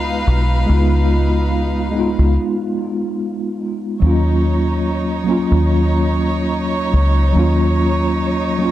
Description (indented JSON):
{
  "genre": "trip hop",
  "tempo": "72 BPM",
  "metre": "4/4",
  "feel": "swing 58% on 16ths",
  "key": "Eb minor",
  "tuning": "A4 = 440 Hz",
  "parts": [
    { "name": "mellow tine electric piano", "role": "accompaniment", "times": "0.0-8.7 s", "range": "Gb3 to F4", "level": "-18 LUFS", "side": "equal", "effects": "medium stereo tremolo, tape echo" },
    { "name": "clear chamber violin section", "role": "sustained chords", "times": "0.0-8.7 s", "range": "Eb4 to F5", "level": "-24 LUFS", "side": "right 2 dB", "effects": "none" },
    { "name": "deep dub fingered electric bass", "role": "bass", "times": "0.0-8.7 s", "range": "Cb2 to Eb2", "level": "-16 LUFS", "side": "equal", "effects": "none" },
    { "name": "flickering grainy texture", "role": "texture", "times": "0.0-2.4 s", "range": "F4", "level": "-34 LUFS", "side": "right 1 dB", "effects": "built-in reverb" }
  ],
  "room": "light reverb, digital ambience",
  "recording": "none",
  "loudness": "-14 LUFS",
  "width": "side -13 dB against mid",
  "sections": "0.0-4.0 A section; 4.0-8.7 B section",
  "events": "break 2.4-4.0",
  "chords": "0.0 Db9; 4.0 Ebm7"
}